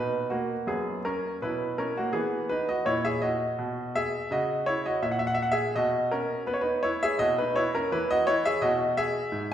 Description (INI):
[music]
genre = classical, baroque-style suite movement for grand piano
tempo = 83 BPM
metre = 4/4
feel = rubato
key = B major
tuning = A4 = 440 Hz
[part]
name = bright baby grand piano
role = solo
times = 0.0-9.5 s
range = F#2 to F#5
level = -25 LUFS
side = equal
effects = none
[sound]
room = wet recital hall reverb, RT60 1.8 s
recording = heard from further back in the room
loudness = -25 LUFS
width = side -10 dB against mid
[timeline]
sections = 0.0-9.5 A section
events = none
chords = 0.0 B; 1.4 C#m7/B (rootless); 2.9 F#7/A#; 5.7 B; 8.6 B5